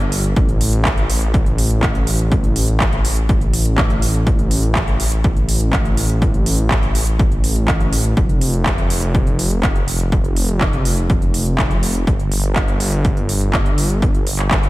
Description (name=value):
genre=melodic techno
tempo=123 BPM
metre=4/4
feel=straight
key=unclear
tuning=A4 = 441 Hz
part: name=swelling detuned saw bass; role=bass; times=0.0-14.7 s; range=F1 to A1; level=-18 LUFS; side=equal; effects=tube saturation, sidechain pumping
part: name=techno drum kit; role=drums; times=0.0-14.7 s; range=handclaps, hi-hat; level=-22 LUFS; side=right 1 dB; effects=sidechain pumping on hats
part: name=electronic kick drum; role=drums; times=0.4-14.6 s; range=none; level=-18 LUFS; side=equal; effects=none
room=little or no reverb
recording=none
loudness=-14 LUFS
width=side -18 dB against mid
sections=0.0-14.7 A section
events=none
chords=none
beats=| 0.36 0.85 1.34 1.83 | 2.32 2.80 3.29 3.78 | 4.27 4.75 5.24 5.73 | 6.22 6.71 7.19 7.68 | 8.17 8.66 9.14 9.63 | 10.12 10.61 11.10 11.58 | 12.07 12.56 13.05 13.54 | 14.02 14.51